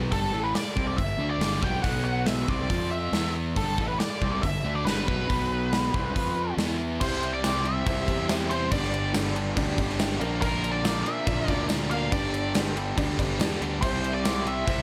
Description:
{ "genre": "classic rock", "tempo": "140 BPM", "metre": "4/4", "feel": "straight", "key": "G mixolydian", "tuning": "A4 = 440 Hz", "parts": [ { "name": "biting overdriven guitar", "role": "riff", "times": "0.0-14.8 s", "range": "G2 to F4", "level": "-38 LUFS", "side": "equal", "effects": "phaser" }, { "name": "crunchy overdriven guitar", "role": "riff", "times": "0.0-14.8 s", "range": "G2 to Bb4", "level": "-34 LUFS", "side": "equal", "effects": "none" }, { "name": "fuzz fingered electric bass", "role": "bass", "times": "0.0-14.8 s", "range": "G1 to F2", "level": "-34 LUFS", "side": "equal", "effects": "overdrive" }, { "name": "octave-fuzz lead guitar", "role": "melody", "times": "0.1-14.8 s", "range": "A4 to G5", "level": "-33 LUFS", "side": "equal", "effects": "wah, distortion" }, { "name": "gated 80s drum kit", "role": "drums", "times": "0.1-14.8 s", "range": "crash cymbal, hi-hat, kick drum, snare drum", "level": "-31 LUFS", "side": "equal", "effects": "none" }, { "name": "honky-tonk upright piano", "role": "accompaniment", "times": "7.0-14.8 s", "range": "D4 to G5", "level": "-38 LUFS", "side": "equal", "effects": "none" }, { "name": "tambourine", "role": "percussion", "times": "7.4-14.3 s", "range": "none", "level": "-45 LUFS", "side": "equal", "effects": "none" } ], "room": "light reverb, small room ambience", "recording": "none", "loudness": "-27 LUFS", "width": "mono", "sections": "0.0-7.0 A section; 7.0-14.8 B section", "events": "none", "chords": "0.0 G; 1.8 B5; 2.5 G5; 2.7 F5; 3.1 E5; 3.6 G; 5.3 B5; 5.9 G; 6.1 F5; 6.6 E5; 7.0 C; 8.7 G; 10.2 Bb; 12.1 G; 13.8 C" }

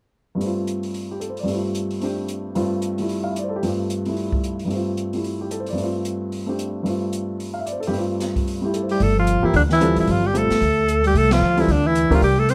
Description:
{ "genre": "modal jazz", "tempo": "223 BPM", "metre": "4/4", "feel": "swing 58% on 8ths", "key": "unclear", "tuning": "A4 = 439 Hz", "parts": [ { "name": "warm baby grand piano", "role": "accompaniment", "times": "0.3-12.2 s", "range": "G2 to F5", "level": "-26 LUFS", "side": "equal", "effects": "none" }, { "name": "open jazz drum kit", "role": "drums", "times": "0.4-12.5 s", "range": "hi-hat, kick drum, ride cymbal, snare drum", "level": "-34 LUFS", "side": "equal", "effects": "none" }, { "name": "clear alto saxophone", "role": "melody", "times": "8.9-12.5 s", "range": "D4 to C5", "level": "-22 LUFS", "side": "equal", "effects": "none" }, { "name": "dark bass clarinet", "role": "second line", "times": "8.9-12.5 s", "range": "D3 to C4", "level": "-25 LUFS", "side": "equal", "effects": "none" }, { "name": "upright bass", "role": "bass", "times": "9.0-12.5 s", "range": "F#1 to D2", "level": "-22 LUFS", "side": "equal", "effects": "none" } ], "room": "light reverb", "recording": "dark, warm production", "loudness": "-22 LUFS", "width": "mono", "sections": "0.4-9.0 A section; 9.0-12.5 B section", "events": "band accent 11.3", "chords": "0.4 G9sus4" }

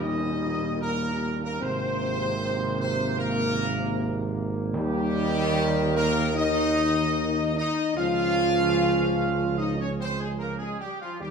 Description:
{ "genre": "classical", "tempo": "75 BPM", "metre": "4/4", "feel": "straight", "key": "unclear", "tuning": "A4 = 440 Hz", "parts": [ { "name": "clear trumpet section", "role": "melody", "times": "0.0-11.3 s", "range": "F4 to F5", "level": "-29 LUFS", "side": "right 1 dB", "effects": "none" }, { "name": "bright trombone section", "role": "sustained chords", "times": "0.0-11.3 s", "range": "Bb2 to Db4", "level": "-31 LUFS", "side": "right 2 dB", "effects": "none" }, { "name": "mellow French horn section", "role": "sustained chords", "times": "0.0-11.3 s", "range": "F3 to F4", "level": "-28 LUFS", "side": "left 4 dB", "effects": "none" }, { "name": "mellow tuba", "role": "bass", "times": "0.0-11.3 s", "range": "Ab1 to Eb2", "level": "-29 LUFS", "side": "right 4 dB", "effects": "none" }, { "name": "timpani", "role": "percussion", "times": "4.7-5.9 s", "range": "Eb3", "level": "-40 LUFS", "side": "left 2 dB", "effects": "none" } ], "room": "moderate recital hall reverb, RT60 1.5 s", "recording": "none", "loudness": "-23 LUFS", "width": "side -6 dB against mid", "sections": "0.0-11.3 A section", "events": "none", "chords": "0.0 Eb; 1.6 Abadd9; 4.7 Eb; 8.0 Db" }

